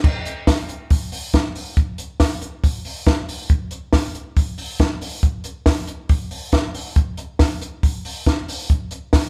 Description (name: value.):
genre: indie pop.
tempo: 138 BPM.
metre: 4/4.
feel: straight.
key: none.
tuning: none.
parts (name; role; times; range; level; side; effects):
compact cocktail drum kit; drums; 0.0-9.2 s; crash cymbal, hi-hat, kick drum, snare drum; -20 LUFS; equal; none.
room: moderate large studio reverb, RT60 1.1 s.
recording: band playing live in one room.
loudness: -21 LUFS.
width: mono.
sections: 0.0-9.3 A section.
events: none.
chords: none.